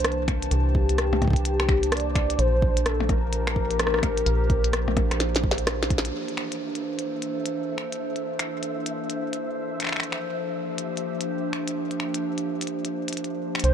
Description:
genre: IDM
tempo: 128 BPM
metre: 4/4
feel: swing 62% on 16ths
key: Bb lydian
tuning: A4 = 440 Hz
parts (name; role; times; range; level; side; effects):
- warm velvety synth lead; melody; 0.0-5.7, 13.6-13.7 s; G4 to D5; -28 LUFS; left 1 dB; chorus, phaser, tape echo
- warbly tape-like pad; sustained chords; 0.0-13.7 s; E3 to A5; -29 LUFS; right 1 dB; chorus, built-in reverb
- metallic FM bass; bass; 0.0-6.1, 13.6-13.7 s; Bb1 to C2; -25 LUFS; equal; none
- glitchy drum kit; drums; 0.0-13.7 s; finger snaps, hi-hat, percussion blips, rim click, snare drum; -28 LUFS; left 1 dB; none
- electronic kick drum; drums; 0.3-6.0 s; none; -25 LUFS; equal; none
- flickering grainy texture; texture; 6.7-13.7 s; E5; -39 LUFS; equal; built-in reverb
room: light reverb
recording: none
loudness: -23 LUFS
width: side -9 dB against mid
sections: 0.0-6.1 A section; 6.1-13.6 B section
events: drum fill 5.2-6.1; band accent 6.0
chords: 0.0 C13; 2.4 Bb69; 6.1 C13; 9.9 Bb69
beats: 0.04 | 0.51 0.98 1.45 1.92 | 2.39 2.86 3.33 3.79 | 4.26 4.73 5.20 5.67 | 6.14 6.61 7.08 7.54 | 8.01 8.48 8.95 9.42 | 9.89 10.36 10.83 11.29 | 11.76 12.23 12.70 13.17 | 13.64

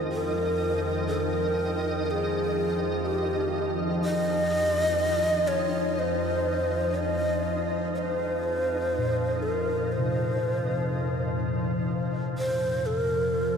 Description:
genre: dark ambient drone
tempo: 61 BPM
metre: 4/4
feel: straight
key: unclear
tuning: A4 = 436 Hz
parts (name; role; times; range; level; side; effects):
- deep dark ambient pad; sustained chords; 0.0-11.9 s; F3 to G5; -40 LUFS; right 1 dB; chorus, built-in reverb
- bronze singing bowl; arpeggios; 0.0-13.6 s; Bb2 to C5; -34 LUFS; equal; ping-pong delay
- organ-like drone; drone; 0.0-13.6 s; F2 to F3; -30 LUFS; left 1 dB; ensemble chorus, built-in reverb
- flickering grainy texture; texture; 0.0-11.9 s; Eb4 to Eb5; -35 LUFS; right 1 dB; built-in reverb
- breathy mellow long shakuhachi; melody; 0.1-13.6 s; G4 to Eb5; -27 LUFS; equal; ping-pong delay
room: wet huge ambient reverb, RT60 8.0 s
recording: none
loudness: -24 LUFS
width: side -6 dB against mid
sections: 0.0-11.9 A section; 11.9-13.6 B section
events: fade-out on ambient pad 0.0-11.9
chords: 0.0 Cm/F; 11.9 F5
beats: | 0.09 1.07 2.05 3.04 | 4.02 5.00 5.99 6.97 | 7.96 8.94 9.92 10.91 | 11.89 12.87

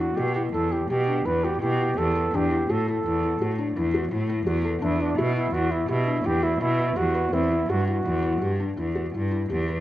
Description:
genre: contemporary instrumental, chamber music in an uneven meter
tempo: 167 BPM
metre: 7/4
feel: straight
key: E minor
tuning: A4 = 440 Hz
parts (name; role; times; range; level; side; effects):
- mellow flugelhorn; melody; 0.0-8.6 s; D4 to B4; -26 LUFS; right 2 dB; none
- felt-muted upright piano; arpeggios; 0.0-9.8 s; C4 to B4; -28 LUFS; left 3 dB; none
- clear cello; bass; 0.0-9.8 s; E2 to B2; -26 LUFS; equal; none
room: light reverb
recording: none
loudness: -22 LUFS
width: side -14 dB against mid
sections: 0.0-9.8 A section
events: none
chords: 0.0 Em; 2.3 Dadd9/E (rootless); 4.8 E5; 7.3 C/E (rootless)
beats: 0.17 0.54 0.90 1.26 1.62 1.98 | 2.34 2.70 3.05 3.41 3.76 4.12 4.47 | 4.83 5.18 5.54 5.89 6.25 6.61 6.97 | 7.33 7.68 8.04 8.40 8.77 9.13 9.49

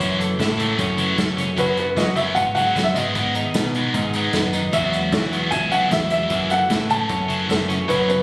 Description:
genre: indie rock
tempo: 152 BPM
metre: 4/4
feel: straight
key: unclear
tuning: A4 = 440 Hz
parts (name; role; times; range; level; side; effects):
- clear upright piano; melody; 0.0-8.2 s; B4 to A5; -21 LUFS; equal; analog delay
- scooped high-gain guitar; riff; 0.0-8.2 s; F#2 to B3; -23 LUFS; left 1 dB; distortion
- twelve-string electric guitar; riff; 0.0-8.2 s; E3 to E4; -26 LUFS; right 1 dB; wide subtle chorus, analog delay
- growling picked electric bass; bass; 0.0-8.2 s; C#2 to F#3; -24 LUFS; equal; overdrive
- unplugged drum kit; drums; 0.0-8.2 s; hi-hat, kick drum, snare drum; -25 LUFS; equal; none
room: light reverb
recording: recorded on a phone in the room, studio reverb, compression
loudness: -17 LUFS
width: side -24 dB against mid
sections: 0.0-8.2 A section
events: none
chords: 0.0 F#m7; 1.6 Bsus2/F#; 3.0 G#m; 4.7 Eadd9; 6.3 F#m7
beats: | 0.00 0.39 0.79 1.18 | 1.57 1.97 2.36 2.76 | 3.15 3.54 3.94 4.33 | 4.73 5.12 5.52 5.91 | 6.31 6.70 7.10 7.49 | 7.89

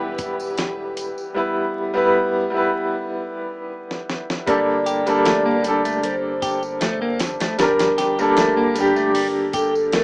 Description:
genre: trip hop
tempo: 77 BPM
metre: 4/4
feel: straight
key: unclear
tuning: A4 = 440 Hz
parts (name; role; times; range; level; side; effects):
- vibraphone with soft mallets; melody; 0.0-10.0 s; G4 to D5; -24 LUFS; equal; tape echo
- bright upright piano; accompaniment; 0.0-10.0 s; G3 to B4; -20 LUFS; equal; tremolo
- muted chamber string section; sustained chords; 0.0-1.3 s; E3 to B4; -32 LUFS; equal; vintage 12-bit sampler grit
- soft dub sub bass; bass; 0.0-10.0 s; E1 to D2; -42 LUFS; equal; tube saturation
- dusty soul sampler-style drum kit; drums; 0.2-10.0 s; hi-hat, kick drum, snare drum; -24 LUFS; equal; none
- tambourine and triangle; percussion; 0.2-10.0 s; none; -39 LUFS; equal; none
- clean electric guitar; arpeggios; 4.5-10.0 s; G3 to G4; -24 LUFS; equal; harmonic tremolo, digital delay
room: little or no reverb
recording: rough home demo mix, vinyl crackle, small speaker sound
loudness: -18 LUFS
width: side -34 dB against mid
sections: 0.0-4.5 A section; 4.5-10.0 B section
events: drum fill 3.9-4.5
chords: 0.0 Em; 4.5 Gmadd9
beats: 0.58 | 1.36 2.14 2.92 3.69 | 4.47 5.25 6.03 6.81 | 7.59 8.37 9.15 9.93

